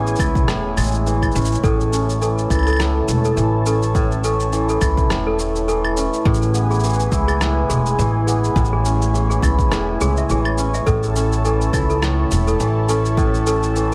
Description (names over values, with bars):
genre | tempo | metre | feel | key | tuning
folktronica | 104 BPM | 4/4 | swing 56% on 16ths | A major | A4 = 439 Hz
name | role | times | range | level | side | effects
warm analog pad | sustained chords | 0.0-13.9 s | E4 to A5 | -29 LUFS | equal | chorus
hammered dulcimer | arpeggios | 0.0-13.9 s | A2 to E4 | -25 LUFS | equal | delay
upright bass | bass | 0.0-13.9 s | E1 to C#2 | -22 LUFS | equal | none
electronic shaker, claves and rim click | drums | 0.1-13.9 s | none | -30 LUFS | equal | overdrive, studio reverb
electronic kick drum | drums | 0.2-13.3 s | none | -23 LUFS | equal | overdrive, studio reverb
toy piano | second line | 1.6-13.9 s | G#4 to E5 | -28 LUFS | equal | digital delay
room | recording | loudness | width
light reverb, studio reverb | none | -18 LUFS | mono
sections
0.0-13.9 A section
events
none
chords
0.0 C#m; 1.6 A; 6.3 E/A; 10.9 A